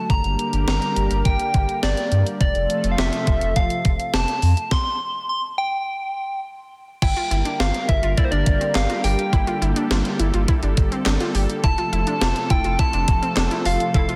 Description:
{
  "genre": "synth-pop",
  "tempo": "104 BPM",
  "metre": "4/4",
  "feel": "straight",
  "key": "G dorian",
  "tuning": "A4 = 440 Hz",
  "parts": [
    { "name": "soft struck synth lead", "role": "melody", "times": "0.0-14.2 s", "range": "C5 to C6", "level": "-26 LUFS", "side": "equal", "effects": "chorus, tape echo" },
    { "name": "lush unison pad", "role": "sustained chords", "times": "0.0-14.2 s", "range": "C3 to Bb4", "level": "-29 LUFS", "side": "equal", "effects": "chorus, phaser" },
    { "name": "round analog bass", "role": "bass", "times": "0.1-14.1 s", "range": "F1 to G2", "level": "-24 LUFS", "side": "equal", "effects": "none" },
    { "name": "gated 80s digital drum machine", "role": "drums", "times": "0.1-14.2 s", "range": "crash cymbal, handclaps, hi-hat, kick drum, snare drum", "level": "-24 LUFS", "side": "equal", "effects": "gated reverb, gated reverb snare" },
    { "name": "unison pluck", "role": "arpeggios", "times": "7.0-14.2 s", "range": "C4 to G4", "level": "-31 LUFS", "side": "equal", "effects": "tape echo" }
  ],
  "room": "light reverb, digital ambience",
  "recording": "dense, heavily limited modern master",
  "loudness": "-21 LUFS",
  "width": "mono",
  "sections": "0.0-7.0 A section; 7.0-14.2 B section",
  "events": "stop 4.7-7.0",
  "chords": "0.1 Gm; 2.4 F; 4.7 N.C.; 7.0 Gm; 11.6 F",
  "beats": "| 0.10 0.68 1.25 1.83 | 2.41 2.98 3.56 4.14 | 4.71 5.29 5.87 6.45 | 7.02 7.60 8.18 8.75 | 9.33 9.91 10.48 11.06 | 11.64 12.21 12.79 13.37 | 13.95"
}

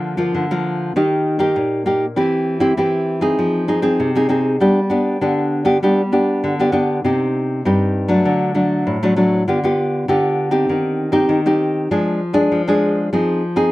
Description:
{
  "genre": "samba",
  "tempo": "99 BPM",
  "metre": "4/4",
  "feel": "straight",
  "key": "C harmonic minor",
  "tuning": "A4 = 440 Hz",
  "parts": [
    { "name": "nylon-string guitar", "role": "solo", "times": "0.0-13.7 s", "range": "G2 to Ab4", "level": "-15 LUFS", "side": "equal", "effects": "none" }
  ],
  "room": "light reverb",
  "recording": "dry, close 1970s-style studio recording",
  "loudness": "-15 LUFS",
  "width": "side -18 dB against mid",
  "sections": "0.0-13.7 A section",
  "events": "none",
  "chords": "0.0 Bb/D; 1.0 Eb; 2.2 C/E; 3.4 Fm7; 4.6 G; 7.0 Cm; 8.3 D; 9.5 G7/D; 10.7 Cm/Eb; 11.9 Ddim/F; 13.1 Fm7",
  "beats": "0.35 0.96 1.57 | 2.18 2.79 3.39 4.00 | 4.61 5.22 5.83 6.43 | 7.04 7.65 8.26 8.87 | 9.47 10.08 10.69 11.30 | 11.91 12.52 13.12"
}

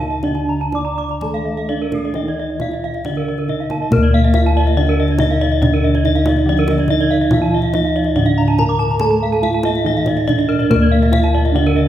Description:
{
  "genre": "Balinese gamelan",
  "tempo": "120-142 BPM",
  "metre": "4/4",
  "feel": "straight",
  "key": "D pelog",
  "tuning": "A4 = 440 Hz",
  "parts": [
    { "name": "gamelan-type bronze metallophone", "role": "melody", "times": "0.0-11.9 s", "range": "Bb3-20c to D5", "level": "-19 LUFS", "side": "right 3 dB", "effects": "none" },
    { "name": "gamelan-type bronze metallophone", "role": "accompaniment", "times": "0.0-11.9 s", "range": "D3 to Bb3-20c", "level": "-24 LUFS", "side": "left 1 dB", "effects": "none" },
    { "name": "gamelan-type bronze metallophone", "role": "arpeggios", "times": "0.0-11.8 s", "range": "A4-30c to D6", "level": "-24 LUFS", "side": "right 3 dB", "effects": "none" },
    { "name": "gamelan-type bossed gongs", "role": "bass", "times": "0.0-11.9 s", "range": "D2 to Bb4-20c", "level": "-19 LUFS", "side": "left 1 dB", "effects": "none" },
    { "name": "gamelan-type bronze metallophone", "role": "arpeggios", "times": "0.1-11.9 s", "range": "Bb4-20c to D6", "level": "-22 LUFS", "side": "left 4 dB", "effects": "none" },
    { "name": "kendang", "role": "percussion", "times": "0.1-11.7 s", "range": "none", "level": "-24 LUFS", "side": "left 1 dB", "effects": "none" }
  ],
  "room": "wet recital hall reverb, RT60 1.8 s",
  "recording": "recorded in a church or concert hall",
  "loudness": "-14 LUFS",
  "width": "side -12 dB against mid",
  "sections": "0.0-3.9 A section; 3.9-11.9 B section",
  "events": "none",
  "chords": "none",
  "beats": "| 0.24 0.74 1.22 1.70 | 2.16 2.61 3.06 3.50 | 3.92 4.35 4.77 5.19 | 5.62 6.04 6.46 6.89 | 7.31 7.74 8.16 8.58 | 9.01 9.43 9.86 10.28 | 10.70 11.13 11.55"
}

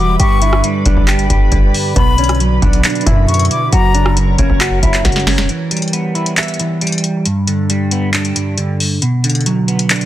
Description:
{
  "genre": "hip hop, trap",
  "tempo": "136 BPM",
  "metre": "4/4",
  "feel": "half-time",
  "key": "B harmonic minor",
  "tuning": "A4 = 440 Hz",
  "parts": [
    { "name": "mellow electric guitar", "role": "melody", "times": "0.0-5.5 s", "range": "B3 to G4", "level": "-20 LUFS", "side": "equal", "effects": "low-pass filter" },
    { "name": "breathy concert flute", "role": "second line", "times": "0.0-4.1 s", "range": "A#5 to D6", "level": "-19 LUFS", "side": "left 5 dB", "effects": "digital delay" },
    { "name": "semi-hollow electric guitar", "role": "accompaniment", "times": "0.0-10.1 s", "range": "F#2 to E5", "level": "-16 LUFS", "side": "right 1 dB", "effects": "analog chorus, low-pass filter" },
    { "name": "glassy FM pad", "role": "sustained chords", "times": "0.0-5.5 s", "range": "G3 to B5", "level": "-25 LUFS", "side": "right 1 dB", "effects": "ensemble chorus, built-in reverb" },
    { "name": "hard-hitting 808-style bass", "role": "bass", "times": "0.0-5.5 s", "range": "E1 to F#2", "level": "-15 LUFS", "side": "equal", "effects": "none" },
    { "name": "booming analog drum machine", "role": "drums", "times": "0.2-10.1 s", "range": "handclaps, hi-hat, kick drum, rim click, snare drum", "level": "-15 LUFS", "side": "equal", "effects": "none" }
  ],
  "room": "little or no reverb",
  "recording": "dense, heavily limited modern master",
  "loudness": "-11 LUFS",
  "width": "side -13 dB against mid",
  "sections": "0.0-5.5 A section; 5.5-10.1 B section",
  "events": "drum fill 5.0-5.5; break 5.5-10.1",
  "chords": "0.2 G; 2.0 Bm; 3.7 F#; 5.5 Em; 7.3 G; 9.0 Bm",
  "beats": "| 0.20 0.64 1.08 1.52 | 1.96 2.40 2.84 3.28 | 3.73 4.17 4.61 5.05 | 5.49 5.93 6.37 6.81 | 7.25 7.70 8.14 8.58 | 9.02 9.46 9.90"
}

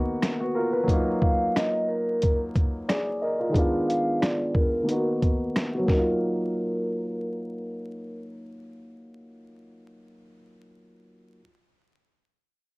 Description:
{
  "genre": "hip hop, boom-bap hip-hop",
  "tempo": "90 BPM",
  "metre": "4/4",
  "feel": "swing 55% on 16ths",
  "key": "Eb harmonic minor",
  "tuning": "A4 = 440 Hz",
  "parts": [
    { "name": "dark grand piano", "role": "accompaniment", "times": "0.0-11.4 s", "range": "D#3 to Eb5", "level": "-27 LUFS", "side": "equal", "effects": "cassette tape, high-pass filter, low-pass filter" },
    { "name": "boom bap sampler-style drum kit", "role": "drums", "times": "0.2-6.1 s", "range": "hi-hat, kick drum, rim click, snare drum", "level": "-25 LUFS", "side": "equal", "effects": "cassette tape" },
    { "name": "vibraphone with soft mallets", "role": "melody", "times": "1.2-8.2 s", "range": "Bb4 to F5", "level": "-29 LUFS", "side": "equal", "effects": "high-pass filter, low-pass filter, cassette tape" }
  ],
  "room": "little or no reverb",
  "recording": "home recording on cassette, vinyl crackle",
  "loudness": "-23 LUFS",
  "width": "side -24 dB against mid",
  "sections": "0.0-6.2 A section; 6.2-8.9 B section",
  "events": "filter sweep 0.0-6.2",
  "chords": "0.0 Bmaj7#11/D#; 0.9 Ebmadd9; 3.5 Bb7b9; 4.9 Bmaj7/D#; 5.9 Ebmadd9",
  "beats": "0.22 | 0.88 1.55 2.22 2.88 | 3.55 4.22 4.88 5.55 | 6.22 6.88 7.55 8.22"
}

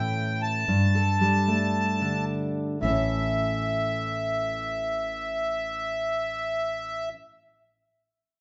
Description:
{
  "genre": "folk",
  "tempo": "112 BPM",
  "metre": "4/4",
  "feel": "straight",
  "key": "A mixolydian",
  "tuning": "A4 = 440 Hz",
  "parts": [
    { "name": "accordion", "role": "melody", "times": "0.0-7.1 s", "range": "E5 to A5", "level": "-30 LUFS", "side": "equal", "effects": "none" },
    { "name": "fingerpicked steel-string acoustic guitar", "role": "accompaniment", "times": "0.0-7.2 s", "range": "G2 to A4", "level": "-30 LUFS", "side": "equal", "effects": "none" },
    { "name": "upright bass", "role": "bass", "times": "0.0-7.1 s", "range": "A1 to A2", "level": "-38 LUFS", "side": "equal", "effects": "none" }
  ],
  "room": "moderate large studio reverb, RT60 1.4 s",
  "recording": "band playing live in one room, nothing above 7.8 kHz",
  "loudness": "-27 LUFS",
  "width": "mono",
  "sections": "0.0-2.8 A section; 2.8-7.1 B section",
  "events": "none",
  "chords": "0.0 A; 0.7 Gsus2; 2.8 A",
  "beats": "0.14 | 0.67 1.21 1.74 2.28 | 2.82 3.35 3.89 4.42 | 4.96 5.50 6.03 6.57"
}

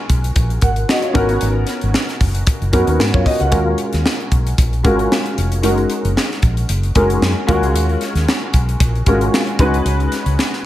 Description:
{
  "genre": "polished 1980s jazz-funk pop",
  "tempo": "114 BPM",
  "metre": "4/4",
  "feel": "swing 54% on 16ths",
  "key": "unclear",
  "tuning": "A4 = 439 Hz",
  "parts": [
    { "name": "warm baby grand piano", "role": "accompaniment", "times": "0.0-10.7 s", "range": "G#3 to F#5", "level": "-18 LUFS", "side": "left 1 dB", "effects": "ensemble chorus" },
    { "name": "vintage muted fingered electric bass", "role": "bass", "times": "0.1-10.4 s", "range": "E#1 to G#2", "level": "-18 LUFS", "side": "equal", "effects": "none" },
    { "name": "crisp fusion drum kit", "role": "drums", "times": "0.1-10.6 s", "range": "hi-hat, kick drum, snare drum", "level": "-18 LUFS", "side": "equal", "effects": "gated reverb" }
  ],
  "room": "small room ambience",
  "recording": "none",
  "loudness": "-14 LUFS",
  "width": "side -14 dB against mid",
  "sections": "0.0-10.7 A section",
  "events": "none",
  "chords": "0.0 D#m11; 1.2 G#m11; 3.5 D#m11; 5.6 F#69; 7.5 D#m11; 9.6 C#7sus4",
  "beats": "0.36 0.89 | 1.42 1.95 2.47 3.00 | 3.53 4.06 4.58 5.11 | 5.64 6.17 6.69 7.22 | 7.75 8.28 8.80 9.33 | 9.86 10.39"
}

